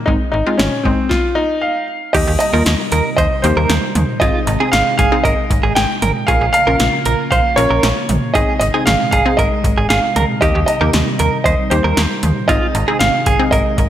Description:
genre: synth-pop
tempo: 116 BPM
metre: 4/4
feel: straight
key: unclear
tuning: A4 = 440 Hz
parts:
  - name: warm grand piano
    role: melody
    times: 0.0-13.9 s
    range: C4 to G5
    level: -18 LUFS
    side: equal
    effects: digital delay
  - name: wide unison pluck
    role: accompaniment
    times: 0.1-13.9 s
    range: Ab3 to Bb4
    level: -22 LUFS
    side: left 1 dB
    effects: none
  - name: slap-like FM bass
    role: bass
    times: 0.1-13.9 s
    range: Ab1 to Eb2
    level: -18 LUFS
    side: equal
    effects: none
  - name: electro analog drum machine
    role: drums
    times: 0.1-13.9 s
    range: cowbell, crash cymbal, hi-hat, kick drum, snare drum, toms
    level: -19 LUFS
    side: equal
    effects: overdrive
  - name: direct-recorded clean electric guitar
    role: second line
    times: 2.1-13.6 s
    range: F4 to C5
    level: -20 LUFS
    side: right 5 dB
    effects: tremolo, digital delay
  - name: string machine, cellos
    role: sustained chords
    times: 2.1-13.9 s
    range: C3 to F4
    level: -24 LUFS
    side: equal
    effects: ensemble chorus
room: light reverb, digital ambience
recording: none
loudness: -12 LUFS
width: side -11 dB against mid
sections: 0.0-2.1 A section; 2.1-13.9 B section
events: stop 1.1-2.1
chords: 0.1 Ab; 1.1 N.C.; 2.1 Eb6; 4.2 Ab; 6.3 Bbm; 8.4 Ab; 10.4 Eb6; 12.5 Ab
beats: | 0.08 0.59 1.11 1.63 | 2.15 2.66 3.18 3.70 | 4.21 4.73 5.25 5.77 | 6.28 6.80 7.32 7.83 | 8.35 8.87 9.39 9.90 | 10.42 10.94 11.46 11.97 | 12.49 13.01 13.52

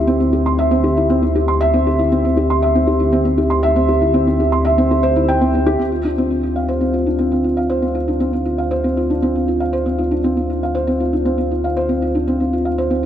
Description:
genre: piano and strings electronica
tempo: 118 BPM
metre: 4/4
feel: straight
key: D minor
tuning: A4 = 440 Hz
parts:
  - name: felt-muted upright piano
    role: riff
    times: 0.0-13.1 s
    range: C4 to C6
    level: -15 LUFS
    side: equal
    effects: ping-pong delay
  - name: dark detuned saw bass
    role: bass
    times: 0.0-13.1 s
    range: D2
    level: -21 LUFS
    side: equal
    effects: tube saturation
room: moderate huge ambient reverb, RT60 4.1 s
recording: none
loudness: -14 LUFS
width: side -10 dB against mid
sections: 0.0-5.8 A section; 5.8-13.1 B section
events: none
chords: 0.0 C/D; 5.8 Dm7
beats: 0.21 0.71 1.22 | 1.73 2.24 2.75 3.26 | 3.77 4.28 4.78 5.29 | 5.80 6.31 6.82 7.33 | 7.83 8.34 8.85 9.36 | 9.87 10.38 10.88 11.39 | 11.90 12.41 12.92

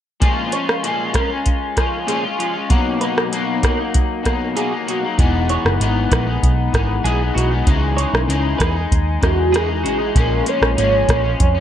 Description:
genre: indie pop, bedroom pop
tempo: 97 BPM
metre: 4/4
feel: straight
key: unclear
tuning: A4 = 440 Hz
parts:
  - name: electric guitar at the edge of break-up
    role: accompaniment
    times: 0.2-11.6 s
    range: A#2 to E#4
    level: -20 LUFS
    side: left 3 dB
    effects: analog chorus, vibrato effect
  - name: soft vintage rhythm box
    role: drums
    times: 0.2-11.5 s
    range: hi-hat, kick drum, rim click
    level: -18 LUFS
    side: equal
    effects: none
  - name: twelve-string electric guitar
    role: second line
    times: 0.5-10.0 s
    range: E#4 to C#5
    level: -27 LUFS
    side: right 4 dB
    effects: lush chorus, tape echo
  - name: vintage muted picked electric bass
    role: bass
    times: 5.2-11.6 s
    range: E1 to E#2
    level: -20 LUFS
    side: equal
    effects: none
  - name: warm velvety synth lead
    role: melody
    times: 9.2-11.6 s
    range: F#4 to C#5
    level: -19 LUFS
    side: right 2 dB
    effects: lush chorus
room: little or no reverb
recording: none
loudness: -15 LUFS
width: side -10 dB against mid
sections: 0.2-10.2 A section; 10.2-11.6 B section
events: none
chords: 0.2 A#m7; 2.7 Bmaj7; 5.2 Emaj7; 7.7 C#madd9; 10.2 A#m7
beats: | 0.22 0.84 1.47 2.09 | 2.71 3.33 3.95 4.57 | 5.19 5.81 6.43 7.05 | 7.68 8.30 8.92 9.54 | 10.16 10.78 11.40

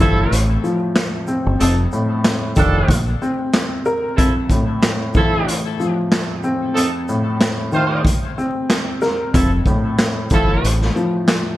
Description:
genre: hip hop, boom-bap hip-hop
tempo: 93 BPM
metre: 4/4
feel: swing 57% on 16ths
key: F major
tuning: A4 = 440 Hz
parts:
  - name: dark upright piano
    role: accompaniment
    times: 0.0-11.6 s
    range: F2 to Bb4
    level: -19 LUFS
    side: left 1 dB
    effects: cassette tape, high-pass filter, low-pass filter
  - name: mellow horn section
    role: stabs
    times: 0.0-10.7 s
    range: F3 to C5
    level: -23 LUFS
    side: right 2 dB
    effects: high-pass filter, low-pass filter, ping-pong delay
  - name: deep dub fingered electric bass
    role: bass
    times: 0.0-3.1, 9.3-10.9 s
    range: F1 to Bb1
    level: -18 LUFS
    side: equal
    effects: none
  - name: raw garage drum kit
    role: drums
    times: 0.3-11.5 s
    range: handclaps, hi-hat, kick drum, shaker, snare drum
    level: -18 LUFS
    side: equal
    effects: gated reverb
room: light reverb, small room ambience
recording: bright 1980s-style digital production, vinyl crackle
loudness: -15 LUFS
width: side -15 dB against mid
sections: 0.0-11.6 A section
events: none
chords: 0.0 Fmaj7; 1.6 F7; 2.9 Bbsus2; 4.2 Fmaj7; 6.8 F7; 8.1 Bbsus2; 9.3 Fmaj7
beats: 0.31 0.96 | 1.60 2.25 2.89 3.54 | 4.18 4.83 5.47 6.12 | 6.76 7.41 8.05 8.70 | 9.34 9.99 10.63 11.28

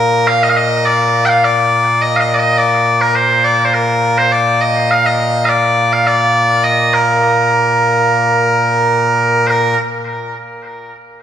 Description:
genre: scottish traditional, Scottish pipe music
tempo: 104 BPM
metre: 4/4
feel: straight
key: Bb major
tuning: A4 = 439 Hz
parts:
  - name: loud bright bagpipes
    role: solo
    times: 0.0-9.8 s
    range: Bb2 to G5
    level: -11 LUFS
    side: equal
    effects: tape echo
room: wet recital hall reverb, RT60 1.7 s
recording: heard from further back in the room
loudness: -10 LUFS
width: side -9 dB against mid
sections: 0.3-9.5 A section; 9.5-11.2 B section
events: none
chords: none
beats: | 0.28 0.85 1.43 2.01 | 2.59 3.16 3.74 4.32 | 4.89 5.47 6.05 6.62 | 7.20 7.78 8.36 8.93 | 9.51

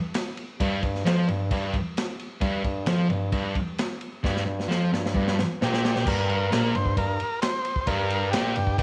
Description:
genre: garage rock duo or trio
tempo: 132 BPM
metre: 4/4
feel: straight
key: G minor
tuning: A4 = 439 Hz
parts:
  - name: crunchy breakbeat drum kit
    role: drums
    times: 0.1-8.8 s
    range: crash cymbal, kick drum, ride cymbal, snare drum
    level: -31 LUFS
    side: equal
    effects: none
  - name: thick fuzz guitar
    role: riff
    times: 0.6-8.8 s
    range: G2 to F3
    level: -28 LUFS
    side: equal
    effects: distortion
  - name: warm bassoon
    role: bass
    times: 0.6-8.8 s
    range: Bb1 to G2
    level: -34 LUFS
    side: equal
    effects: tube saturation
  - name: overdriven combo organ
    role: melody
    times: 5.6-8.8 s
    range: G4 to C5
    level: -31 LUFS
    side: equal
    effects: none
room: moderate echo chamber reverb, RT60 1.6 s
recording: none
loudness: -26 LUFS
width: mono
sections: 0.0-6.1 A section; 6.1-8.8 B section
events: drum fill 4.2-6.1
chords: 0.0 Gm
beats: 0.15 | 0.61 1.06 1.51 1.97 | 2.42 2.88 3.33 3.79 | 4.24 4.70 5.15 5.61 | 6.06 6.51 6.97 7.42 | 7.88 8.33 8.79

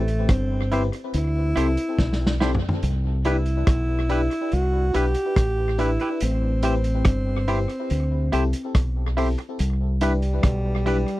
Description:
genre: lovers rock reggae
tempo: 71 BPM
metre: 4/4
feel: straight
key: unclear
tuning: A4 = 440 Hz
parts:
  - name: breathy alto saxophone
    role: melody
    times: 0.0-11.2 s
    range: G3 to G4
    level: -27 LUFS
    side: equal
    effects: tape echo
  - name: deep dub fingered electric bass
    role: bass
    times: 0.0-11.0 s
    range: G1 to D2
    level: -23 LUFS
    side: equal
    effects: none
  - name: vintage drum kit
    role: drums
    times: 0.1-11.2 s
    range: hi-hat, kick drum, rim click, snare drum, toms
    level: -23 LUFS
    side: equal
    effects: tape echo
  - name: FM electric piano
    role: accompaniment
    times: 0.7-11.0 s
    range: C4 to B4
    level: -30 LUFS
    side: left 3 dB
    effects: chorus, tape echo
  - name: twangy electric guitar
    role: stabs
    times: 0.7-11.0 s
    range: E4 to C5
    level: -26 LUFS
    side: right 3 dB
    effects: none
room: little or no reverb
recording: dry, close 1970s-style studio recording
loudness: -20 LUFS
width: side -17 dB against mid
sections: 0.0-11.2 A section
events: drum fill 2.0-2.8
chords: 0.0 Am7; 1.1 D9sus4; 2.8 Cmaj7; 6.2 Am7; 7.9 D9sus4; 9.6 Cmaj7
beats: 0.29 1.14 1.99 | 2.83 3.68 4.52 5.37 | 6.21 7.06 7.90 8.75 | 9.60 10.44

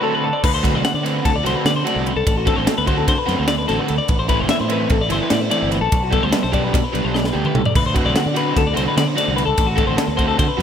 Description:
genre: math rock and midwest emo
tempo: 295 BPM (eighths)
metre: 9/8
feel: straight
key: unclear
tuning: A4 = 441 Hz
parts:
  - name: twelve-string electric guitar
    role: arpeggios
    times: 0.0-10.6 s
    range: F#4 to F#5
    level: -21 LUFS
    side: left 5 dB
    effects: tape echo, slapback echo
  - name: overdriven semi-hollow guitar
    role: riff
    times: 0.0-10.6 s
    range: D3 to G4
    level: -22 LUFS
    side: right 2 dB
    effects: none
  - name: growling fingered electric bass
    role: bass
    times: 0.4-10.6 s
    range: G1 to D3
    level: -23 LUFS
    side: equal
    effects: overdrive
  - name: crisp fusion drum kit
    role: drums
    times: 0.4-10.6 s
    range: crash cymbal, kick drum, ride cymbal, snare drum, toms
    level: -21 LUFS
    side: right 1 dB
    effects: none
room: moderate lush hall reverb, RT60 2.1 s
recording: big arena sound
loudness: -16 LUFS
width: side -8 dB against mid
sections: 0.4-10.6 A section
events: break 0.0-0.4; drum fill 7.1-7.7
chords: 0.4 D7; 4.1 Am7; 5.9 Gadd9/B; 7.7 D7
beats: 0.03 0.23 | 0.43 0.64 0.84 1.04 1.25 1.45 1.65 1.86 2.06 | 2.26 2.47 2.67 2.87 3.08 3.28 3.48 3.68 3.89 | 4.09 4.29 4.50 4.70 4.90 5.11 5.31 5.51 5.72 | 5.92 6.12 6.33 6.53 6.73 6.93 7.14 7.34 7.54 | 7.75 7.95 8.15 8.36 8.56 8.76 8.97 9.17 9.37 | 9.58 9.78 9.98 10.19 10.39 10.60

